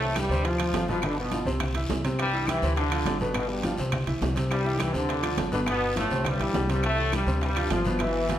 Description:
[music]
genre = latin, salsa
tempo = 207 BPM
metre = 4/4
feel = straight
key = C major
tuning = A4 = 440 Hz
[part]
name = bright trombone section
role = melody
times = 0.0-8.4 s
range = G2 to F4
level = -28 LUFS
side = left 1 dB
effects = none
[part]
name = warm upright piano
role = accompaniment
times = 0.0-8.4 s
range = B2 to G5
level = -30 LUFS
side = right 1 dB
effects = none
[part]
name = upright bass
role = bass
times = 0.0-8.4 s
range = G1 to D2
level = -30 LUFS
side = equal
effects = none
[part]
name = bongos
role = percussion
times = 0.0-8.4 s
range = none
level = -37 LUFS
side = left 4 dB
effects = none
[part]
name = congas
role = percussion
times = 0.0-8.4 s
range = none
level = -36 LUFS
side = equal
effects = none
[part]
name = claves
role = percussion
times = 0.2-8.1 s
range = none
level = -42 LUFS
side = left 4 dB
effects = none
[part]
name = guiro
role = percussion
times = 0.2-8.4 s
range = none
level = -41 LUFS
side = left 3 dB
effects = none
[part]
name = timbales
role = percussion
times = 0.2-8.4 s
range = none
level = -35 LUFS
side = right 6 dB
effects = none
[sound]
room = wet large studio reverb, RT60 1.2 s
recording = none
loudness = -24 LUFS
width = side -11 dB against mid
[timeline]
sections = 0.0-8.4 A section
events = drum fill 8.0-8.4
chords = 0.5 G7; 1.6 Cadd9; 2.8 Dm7; 3.4 G7; 3.9 Cadd9; 5.1 Dm7; 5.7 G7; 6.3 Cadd9; 7.4 Dm7

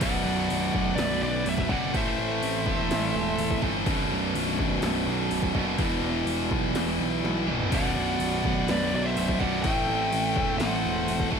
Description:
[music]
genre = heavy metal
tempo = 125 BPM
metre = 4/4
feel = straight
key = B phrygian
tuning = A4 = 441 Hz
[part]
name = high-gain lead guitar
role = melody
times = 0.0-3.6, 7.8-11.3 s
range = D5 to G5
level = -31 LUFS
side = equal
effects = distortion
[part]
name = high-gain lead guitar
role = second line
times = 0.0-3.6, 7.7-11.3 s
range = B4 to E5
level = -37 LUFS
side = right 4 dB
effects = distortion
[part]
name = warm analog pad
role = sustained chords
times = 0.0-11.4 s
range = B2 to D5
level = -38 LUFS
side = right 1 dB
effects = none
[part]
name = distorted electric guitar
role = riff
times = 0.0-11.4 s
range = B1 to A3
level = -31 LUFS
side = equal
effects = distortion
[part]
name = heavy high-gain guitar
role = riff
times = 0.0-11.4 s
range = B1 to A3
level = -31 LUFS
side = left 15 dB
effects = distortion
[part]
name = tight distorted guitar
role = riff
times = 0.0-11.4 s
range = B1 to A3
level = -31 LUFS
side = right 14 dB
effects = distortion
[part]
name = fuzz picked electric bass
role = bass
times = 0.0-11.4 s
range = B0 to B1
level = -32 LUFS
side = equal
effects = overdrive
[part]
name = 80s electronic pad drums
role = drums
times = 0.0-11.4 s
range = crash cymbal, kick drum, snare drum, toms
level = -32 LUFS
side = equal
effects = gated reverb on snare and toms
[sound]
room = digital ambience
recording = none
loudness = -24 LUFS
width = side -6 dB against mid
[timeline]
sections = 0.0-11.4 A section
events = drum fill 7.2-7.7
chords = 0.0 Bm; 1.9 Am; 3.9 Bm; 5.8 Em; 7.7 Bm; 9.6 Am

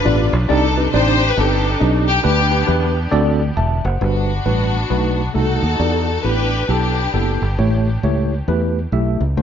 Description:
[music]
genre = uptempo gospel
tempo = 135 BPM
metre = 4/4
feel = swing 63% on 8ths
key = unclear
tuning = A4 = 440 Hz
[part]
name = rich studio string section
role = melody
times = 0.0-7.5 s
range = B3 to C5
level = -20 LUFS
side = left 3 dB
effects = tape echo
[part]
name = tine electric piano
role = accompaniment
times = 0.0-9.4 s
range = G2 to A5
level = -20 LUFS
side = equal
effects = overdrive, fast stereo tremolo
[part]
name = fingered electric bass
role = bass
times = 0.1-9.4 s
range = E1 to E2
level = -18 LUFS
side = right 1 dB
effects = none
[sound]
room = light reverb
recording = nothing above 7.6 kHz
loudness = -15 LUFS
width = side -8 dB against mid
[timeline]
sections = 0.0-4.0 A section; 4.0-9.4 B section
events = none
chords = 0.5 Cmadd9; 2.2 G/D; 3.1 D7; 4.0 Gmaj7; 4.9 B7; 5.8 Em7; 7.6 A7

